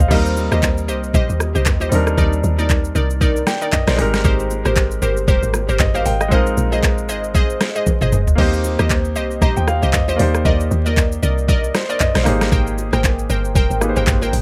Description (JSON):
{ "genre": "amapiano", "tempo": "116 BPM", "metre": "4/4", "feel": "swing 58% on 16ths", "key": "unclear", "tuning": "A4 = 441 Hz", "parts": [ { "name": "clear baby grand piano", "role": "accompaniment", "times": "0.0-14.4 s", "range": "G3 to Bb5", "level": "-25 LUFS", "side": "equal", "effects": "none" }, { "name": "woody log drum bass", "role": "bass", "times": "0.0-14.4 s", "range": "F1 to Eb2", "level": "-22 LUFS", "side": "equal", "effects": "none" }, { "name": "smooth R&B drum kit", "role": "drums", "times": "0.0-14.4 s", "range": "crash cymbal, handclaps, hi-hat, kick drum, rim click, shaker, snare drum, toms", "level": "-20 LUFS", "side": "equal", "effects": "none" }, { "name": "glassy wavetable pluck", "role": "stabs", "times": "0.1-14.3 s", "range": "Eb4 to G5", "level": "-25 LUFS", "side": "equal", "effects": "chorus, analog delay" }, { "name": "congas and bongos", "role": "percussion", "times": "0.1-14.4 s", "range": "none", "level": "-32 LUFS", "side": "equal", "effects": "none" } ], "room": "light reverb", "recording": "vinyl crackle", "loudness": "-17 LUFS", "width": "mono", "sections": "0.1-14.4 A section", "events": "drop 0.1-14.4; drum fill 7.9-8.4", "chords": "0.1 Eb6; 1.9 Cm9/Eb; 4.0 Abmaj9; 8.4 Eb6; 10.2 Cm9/Eb; 12.3 Abmaj9", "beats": "| 0.11 0.62 1.14 1.66 | 2.18 2.69 3.21 3.73 | 4.25 4.76 5.28 5.80 | 6.32 6.83 7.35 7.87 | 8.38 8.90 9.42 9.94 | 10.45 10.97 11.49 12.01 | 12.52 13.04 13.56 14.07" }